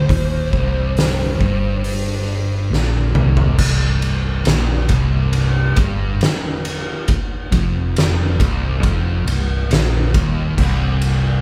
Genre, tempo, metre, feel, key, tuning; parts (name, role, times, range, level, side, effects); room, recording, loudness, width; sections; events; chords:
stoner and doom metal; 69 BPM; 4/4; straight; C minor; A4 = 439 Hz
fuzz lead guitar; melody; 0.0-2.7 s; C5; -29 LUFS; equal; distortion
thick fuzz guitar; riff; 0.0-11.4 s; C2 to Bb2; -28 LUFS; equal; distortion
thick fuzz guitar; riff; 0.0-11.4 s; C2 to Bb2; -24 LUFS; equal; distortion
hollow-body short-scale fingered electric bass; bass; 0.0-11.4 s; C1 to Bb1; -23 LUFS; equal; tube saturation
oversized low-tuned drum kit; drums; 0.1-11.2 s; crash cymbal, hi-hat, kick drum, ride cymbal, snare drum, toms; -21 LUFS; equal
light reverb; band playing live in one room; -18 LUFS; mono
0.0-3.6 A section; 3.6-11.4 B section
drum fill 2.7-3.6
0.0 Cm